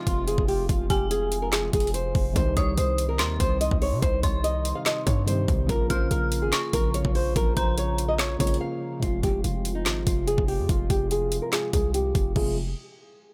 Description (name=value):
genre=hip hop, trap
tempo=144 BPM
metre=4/4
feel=half-time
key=F minor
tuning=A4 = 440 Hz
part: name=flamenco guitar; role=melody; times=0.0-12.6 s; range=Eb4 to F5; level=-31 LUFS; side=equal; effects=low-pass filter, tape echo
part: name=dark detuned synth bell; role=second line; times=0.0-9.0 s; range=Ab5 to F6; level=-37 LUFS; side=equal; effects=chorus, tremolo, tape echo
part: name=felt-muted upright piano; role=accompaniment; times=0.0-12.6 s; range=C3 to Bb4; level=-37 LUFS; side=equal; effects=low-pass filter
part: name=mellow brass ensemble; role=sustained chords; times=0.0-12.6 s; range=C3 to F4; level=-38 LUFS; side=equal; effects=low-pass filter
part: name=hard-hitting 808-style bass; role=bass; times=0.1-12.7 s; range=F1 to C3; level=-30 LUFS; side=equal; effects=none
part: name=trap drum kit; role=drums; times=0.1-12.5 s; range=crash cymbal, handclaps, hi-hat, kick drum, snare drum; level=-29 LUFS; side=equal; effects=none
room=little or no reverb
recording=none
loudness=-25 LUFS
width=mono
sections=0.0-9.0 A section; 9.0-12.4 B section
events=break 8.6-9.0; filter sweep 9.0-12.4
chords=0.0 Fm; 2.4 Cm; 5.7 Bbm; 9.0 Fm